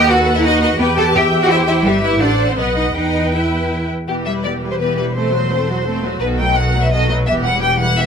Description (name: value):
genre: quick classical-period movement for string orchestra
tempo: 169 BPM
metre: 3/4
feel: rubato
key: E minor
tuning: A4 = 438 Hz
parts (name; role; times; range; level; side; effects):
- rich symphonic violin section; melody; 0.0-8.1 s; G4 to G5; -20 LUFS; left 2 dB; none
- clear symphonic violin section; second line; 0.0-8.1 s; D#4 to A5; -22 LUFS; equal; none
- rich symphonic viola section; accompaniment; 0.0-8.1 s; D#3 to E5; -21 LUFS; left 1 dB; none
- clear symphonic cello section; bass; 0.0-8.1 s; E2 to A4; -19 LUFS; right 1 dB; none
- rich symphonic double bass section; bass; 0.0-8.1 s; E1 to E2; -20 LUFS; equal; none
room: light reverb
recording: minimal, uncompressed stereo recording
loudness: -14 LUFS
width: side -6 dB against mid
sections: 0.0-4.1 A section; 4.1-8.1 A section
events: none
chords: 0.0 B7/D#; 0.8 Em; 1.9 Em/G; 2.2 Am; 2.6 B; 3.0 Em; 5.2 F#dim/E; 6.2 B7; 7.3 Em